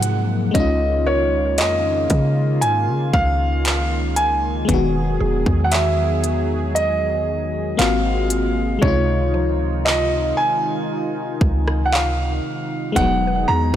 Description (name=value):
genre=contemporary R&B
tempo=58 BPM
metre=4/4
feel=straight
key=Db major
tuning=A4 = 442 Hz
part: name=warm concert grand piano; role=melody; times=0.0-13.8 s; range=Db5 to Bb5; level=-22 LUFS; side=right 2 dB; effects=digital delay
part: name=FM electric piano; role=accompaniment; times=0.0-13.8 s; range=C3 to F#4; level=-24 LUFS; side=left 4 dB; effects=chorus
part: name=warm analog pad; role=sustained chords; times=0.0-13.8 s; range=C3 to Gb5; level=-28 LUFS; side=right 1 dB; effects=chorus
part: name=warm 808-style bass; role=bass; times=0.0-13.8 s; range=E1 to Db3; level=-21 LUFS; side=equal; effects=none
part: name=trap drum kit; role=drums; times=0.0-13.8 s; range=handclaps, hi-hat, kick drum, rim click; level=-23 LUFS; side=equal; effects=none
part: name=mallet-like synth pluck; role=texture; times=0.0-13.8 s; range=F3 to B4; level=-33 LUFS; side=right 4 dB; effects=chorus, digital delay
room=light reverb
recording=blown-out, overdriven recording, overdrive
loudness=-17 LUFS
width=side -11 dB against mid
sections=0.0-13.8 A section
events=hi-hats muted 8.8-13.0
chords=0.0 Ab13; 0.5 Dbadd9; 4.7 Emaj9; 7.8 Ab13; 8.8 Dbmaj9; 13.0 Emaj9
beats=| 0.55 1.58 2.62 3.65 | 4.69 5.72 6.76 7.79 | 8.82 9.86 10.89 11.93 | 12.96